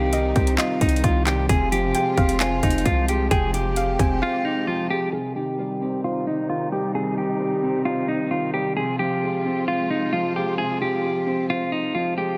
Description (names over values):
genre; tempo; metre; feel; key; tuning
hip hop, trap; 132 BPM; 4/4; half-time; C minor; A4 = 440 Hz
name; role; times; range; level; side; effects
clean electric guitar; melody; 0.0-12.4 s; Eb4 to Ab4; -27 LUFS; equal; spring reverb, low-pass filter, delay
soft round pluck; second line; 0.0-5.1 s; Eb5 to Ab5; -32 LUFS; equal; chorus, delay
dark concert grand piano; accompaniment; 0.0-12.4 s; C3 to C5; -29 LUFS; equal; low-pass filter
muted studio string section; sustained chords; 0.0-12.4 s; C3 to G4; -35 LUFS; equal; low-pass filter
distorted 808-style bass; bass; 0.0-4.2 s; F1 to C2; -27 LUFS; equal; distortion
trap drum kit; drums; 0.1-4.1 s; handclaps, hi-hat, kick drum; -25 LUFS; equal; none
room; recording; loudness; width
light reverb, digital ambience; none; -23 LUFS; mono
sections
0.0-5.1 A section; 5.1-12.4 B section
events
break 4.2-5.1; filter sweep 5.1-12.4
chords
0.0 Cm; 1.5 Fm; 5.1 Cm; 8.8 Fm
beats
0.13 0.58 1.04 | 1.49 1.95 2.40 2.86 | 3.31 3.77 4.22 4.67 | 5.13 5.58 6.04 6.49 | 6.95 7.40 7.86 8.31 | 8.77 9.22 9.68 10.13 | 10.58 11.04 11.49 11.95